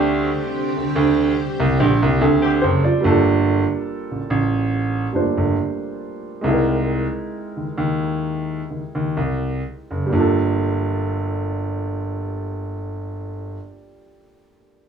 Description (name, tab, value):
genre	R&B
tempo	61-72 BPM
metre	4/4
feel	swing 54% on 16ths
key	G minor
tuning	A4 = 440 Hz
part	warm upright piano	accompaniment	0.0-14.9 s	G3 to D5	-24 LUFS	equal	none
part	string machine, full ensemble	sustained chords	0.0-3.0 s	D3 to G4	-25 LUFS	left 1 dB	ensemble chorus
part	clear grand piano	bass	0.0-13.5 s	F#1 to D#2	-20 LUFS	right 2 dB	none
part	mellow horn section	stabs	1.8-2.7 s	D3 to G4	-25 LUFS	left 4 dB	slapback echo
room	light reverb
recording	rough home demo mix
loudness	-18 LUFS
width	side -7 dB against mid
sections	0.0-3.0 A section; 3.0-10.1 B section; 10.1-14.0 C section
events	band accent 0.0-3.0; slowing down 3.0-10.1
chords	0.0 D7sus4; 3.0 Gm9; 6.4 C7alt; 10.1 Gm9